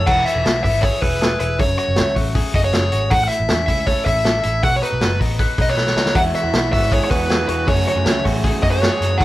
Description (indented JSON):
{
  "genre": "jangly indie pop",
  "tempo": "158 BPM",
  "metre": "4/4",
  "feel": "straight",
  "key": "E major",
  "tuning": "A4 = 441 Hz",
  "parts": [
    { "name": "dark smooth lead guitar", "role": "melody", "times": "0.0-9.2 s", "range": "B4 to F#5", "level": "-20 LUFS", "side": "right 1 dB", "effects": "overdrive" },
    { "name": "direct-recorded clean electric guitar", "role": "arpeggios", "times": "0.0-9.2 s", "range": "F#2 to B4", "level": "-25 LUFS", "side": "left 4 dB", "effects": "spring reverb" },
    { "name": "vintage muted picked electric bass", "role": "bass", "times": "0.0-9.2 s", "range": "E1 to F#2", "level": "-22 LUFS", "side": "equal", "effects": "none" },
    { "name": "vintage drum kit", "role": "drums", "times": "0.1-9.2 s", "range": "crash cymbal, hi-hat, kick drum, snare drum", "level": "-20 LUFS", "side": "equal", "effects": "none" },
    { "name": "overdriven semi-hollow guitar", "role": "accompaniment", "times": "6.1-9.2 s", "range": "F#2 to A4", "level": "-24 LUFS", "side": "right 3 dB", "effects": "none" }
  ],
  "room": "moderate studio ambience, RT60 0.5 s",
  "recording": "band playing live in one room",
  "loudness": "-15 LUFS",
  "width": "side -16 dB against mid",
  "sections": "0.1-9.2 A section",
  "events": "drum fill 5.8-6.2",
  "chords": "0.1 E; 1.6 F#madd9; 3.1 A; 4.6 B; 6.2 Eadd9; 7.7 F#madd9",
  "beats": "| 0.07 0.45 0.83 1.21 | 1.59 1.97 2.35 2.73 | 3.11 3.49 3.87 4.25 | 4.63 5.01 5.39 5.78 | 6.16 6.54 6.92 7.30 | 7.68 8.06 8.44 8.82 | 9.20"
}